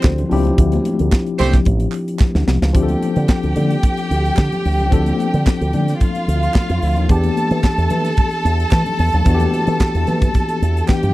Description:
disco; 111 BPM; 4/4; straight; D dorian; A4 = 439 Hz
tine electric piano; accompaniment; 0.0-11.1 s; E3 to A4; -21 LUFS; left 3 dB; medium stereo tremolo
fingered electric bass with an envelope filter; bass; 0.0-11.1 s; A1 to E3; -17 LUFS; right 1 dB
tight funk drum kit; drums; 0.0-11.1 s; hi-hat, kick drum, snare drum; -15 LUFS; equal
group handclap; percussion; 0.0-11.0 s; -32 LUFS; right 10 dB
congas; percussion; 0.2-11.1 s; -27 LUFS; left 3 dB
warm horn section; stabs; 1.4-1.6 s; A3 to C5; -18 LUFS; right 4 dB
warm studio violin section; second line; 2.7-11.1 s; F4 to A5; -22 LUFS; right 1 dB
little or no reverb; dry, close 1970s-style studio recording; -14 LUFS; side -17 dB against mid
0.0-2.8 A section; 2.8-11.1 B section
band accent 0.6-2.8; drum fill 2.2-2.8
0.0 Dm11; 2.8 Dm7; 7.1 Em7
0.04 | 0.58 1.12 1.67 2.21 | 2.75 3.29 3.84 4.38 | 4.92 5.47 6.01 6.55 | 7.09 7.64 8.18 8.72 | 9.27 9.81 10.35 10.89

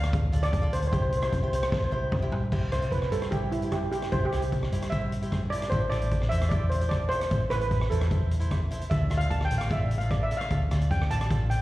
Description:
calypso; 150 BPM; 4/4; straight; C major; A4 = 440 Hz
steel pan; melody; 0.0-11.6 s; E4 to A5; -30 LUFS; right 1 dB; plate reverb, slapback echo
cavaquinho; accompaniment; 0.0-11.5 s; E4 to D5; -39 LUFS; equal; plate reverb, slapback echo
hollow-body short-scale fingered electric bass; bass; 0.0-11.6 s; A1 to G2; -27 LUFS; equal
street-band drum kit; drums; 0.0-11.6 s; crash cymbal, hi-hat, kick drum, rim click, snare drum, toms; -30 LUFS; equal
little or no reverb; live gig heard through the venue's PA, recital hall reverb; -24 LUFS; side -16 dB against mid
0.0-2.5 A section; 2.5-11.6 B section
drum fill 1.7-2.5; steel pan solo 2.5-11.6
0.0 Dm; 0.9 C; 5.7 Am; 8.9 Dm
0.14 0.53 | 0.93 1.33 1.73 2.12 | 2.52 2.92 3.32 3.72 | 4.12 4.52 4.92 5.32 | 5.72 6.12 6.51 6.91 | 7.31 7.71 8.11 8.51 | 8.91 9.31 9.71 10.11 | 10.51 10.91 11.30

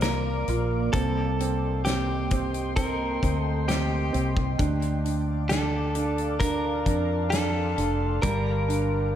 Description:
pop ballad; 66 BPM; 4/4; straight; A4 = 440 Hz
direct-recorded clean electric guitar; melody; 0.0-9.2 s; G4 to Bb4; -30 LUFS; left 1 dB; spring reverb, ping-pong delay
felt-muted upright piano; accompaniment; 0.0-9.2 s; G3 to F4; -31 LUFS; right 4 dB
glassy FM pad; sustained chords; 0.0-9.2 s; Bb3 to D6; -33 LUFS; right 1 dB; ensemble chorus, built-in reverb
mellow fretless electric bass; bass; 0.0-9.2 s; F1 to F2; -28 LUFS; left 1 dB; lush chorus
loose indie drum kit; drums; 0.0-8.9 s; hi-hat, kick drum, snare drum; -30 LUFS; left 1 dB
moderate plate reverb, RT60 2.8 s; dreamy mix soaked in reverb; -23 LUFS; side -10 dB against mid
0.0-9.2 A section
0.0 Bb; 0.9 Cm7; 4.6 Dm; 8.2 Gm7
0.01 | 0.94 1.85 2.77 3.68 | 4.59 5.50 6.41 7.32 | 8.23 9.15

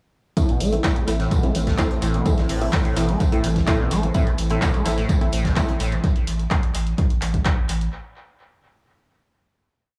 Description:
acid house; 127 BPM; 4/4; straight; A minor; A4 = 440 Hz
lush unison pad; sustained chords; 0.4-6.0 s; E3 to C4; -32 LUFS; equal; chorus, sidechain pumping
liquid acid bass; riff; 0.4-6.0 s; A2 to A3; -29 LUFS; equal; overdrive, subtle chorus, sidechain pumping, dub echo
filtered dub chord stab; stabs; 0.4-5.7 s; A3 to E4; -30 LUFS; equal; chorus, tape echo
electronic kick drum; drums; 0.4-7.6 s; -24 LUFS; equal
punchy analog drum machine; drums; 0.4-7.9 s; handclaps, hi-hat; -32 LUFS; equal; tape echo
tight metal drum kit; drums; 0.4-5.9 s; hi-hat, snare drum, tambourine; -40 LUFS; equal; sidechain pumping on hats, high-pass filter on hats, high-pass filter on snare, sidechain pumping on perc, high-pass filter on perc, high-pass filter on room, tape echo
warm sub bass; bass; 0.6-7.9 s; A1; -27 LUFS; equal; sidechain pumping
light reverb, small room ambience; echo-heavy mix, studio reverb; -21 LUFS; mono
0.4-7.9 groove
0.4 Am
| 0.37 0.84 1.31 1.78 | 2.26 2.73 3.20 3.67 | 4.15 4.62 5.09 5.57 | 6.04 6.51 6.98 7.45

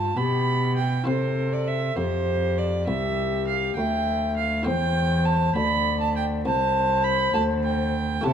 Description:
classical, baroque-style sonata movement with continuo; 67 BPM (dotted quarters); 12/8; straight; C major; A4 = 444 Hz
baroque flute; melody; 0.0-8.3 s; F4 to E5; -28 LUFS; left 9 dB
rich violin; second line; 0.0-8.3 s; C5 to B5; -26 LUFS; right 5 dB
buff-stop harpsichord; accompaniment; 0.0-8.3 s; C2 to C5; -31 LUFS; left 2 dB
rich cello; bass; 0.0-8.3 s; C2 to C3; -25 LUFS; right 1 dB
moderate recital hall reverb, RT60 1.6 s; dark, warm production; -21 LUFS; side -8 dB against mid
0.0-8.3 A section
0.0 G; 1.1 C
0.17 | 1.07 1.98 2.88 3.77 | 4.67 5.55 6.45 7.33 | 8.25

